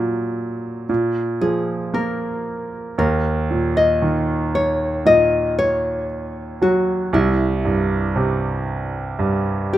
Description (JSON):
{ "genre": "pop", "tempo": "58 BPM", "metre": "4/4", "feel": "straight", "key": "unclear", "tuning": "A4 = 439 Hz", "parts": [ { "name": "nylon-string guitar", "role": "melody", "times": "0.0-9.8 s", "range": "E4 to Eb5", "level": "-20 LUFS", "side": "left 2 dB", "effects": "none" }, { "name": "bright concert grand piano", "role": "accompaniment", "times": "0.0-9.8 s", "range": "C2 to Bb3", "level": "-20 LUFS", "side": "right 2 dB", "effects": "none" } ], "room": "light reverb, small room ambience", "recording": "rough home demo mix", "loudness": "-18 LUFS", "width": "side -13 dB against mid", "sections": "0.0-9.8 A section", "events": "none", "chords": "0.0 Gbmaj7/Bb; 0.9 Bb5; 3.0 Ebm7; 7.1 C" }